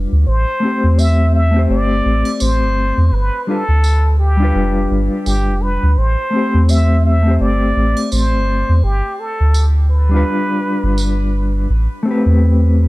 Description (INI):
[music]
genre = trip hop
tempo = 84 BPM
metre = 4/4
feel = swing 58% on 16ths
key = A minor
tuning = A4 = 440 Hz
[part]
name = mellow electric guitar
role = accompaniment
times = 0.0-12.9 s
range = G3 to C5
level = -19 LUFS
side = left 2 dB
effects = tremolo, tape echo
[part]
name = soft dub sub bass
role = bass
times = 0.0-12.9 s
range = F1 to E2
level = -13 LUFS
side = equal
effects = tube saturation
[part]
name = trumpet with plunger mute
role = melody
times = 0.3-11.3 s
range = G4 to E5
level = -21 LUFS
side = equal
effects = tape echo
[part]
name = tambourine and triangle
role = percussion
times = 1.0-11.1 s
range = none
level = -29 LUFS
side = right 4 dB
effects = none
[sound]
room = small room ambience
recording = dark, warm production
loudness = -12 LUFS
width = side -19 dB against mid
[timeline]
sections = 0.0-11.7 A section; 11.7-12.9 B section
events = none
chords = 0.3 Am7; 3.1 G7; 6.0 Am7; 8.8 G7; 11.7 Am9